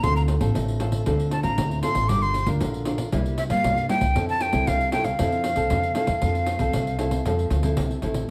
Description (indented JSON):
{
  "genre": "samba and choro",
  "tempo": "116 BPM",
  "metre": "4/4",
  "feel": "straight",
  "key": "F major",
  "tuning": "A4 = 438 Hz",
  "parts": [
    { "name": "breathy bright jazz flute", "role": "melody", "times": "0.0-7.8 s", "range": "E5 to D6", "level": "-28 LUFS", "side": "equal", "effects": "plate reverb" },
    { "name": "nylon-string guitar", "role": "accompaniment", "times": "0.0-8.3 s", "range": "G2 to Bb4", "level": "-30 LUFS", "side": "equal", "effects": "none" },
    { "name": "upright bass", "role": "bass", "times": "0.0-8.3 s", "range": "G1 to G2", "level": "-28 LUFS", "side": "equal", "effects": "none" },
    { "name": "pandeiro", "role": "percussion", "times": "0.0-8.3 s", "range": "none", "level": "-32 LUFS", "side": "equal", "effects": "none" }
  ],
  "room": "moderate large studio reverb, RT60 1.0 s",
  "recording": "none",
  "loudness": "-23 LUFS",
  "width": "mono",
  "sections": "0.0-8.3 A section",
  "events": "none",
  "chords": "0.0 Dm7; 2.1 Gm7; 3.1 C7; 4.2 Fmaj7",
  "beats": "| 0.03 0.55 1.06 1.58 | 2.09 2.61 3.12 3.64 | 4.16 4.67 5.19 5.70 | 6.22 6.74 7.25 7.77"
}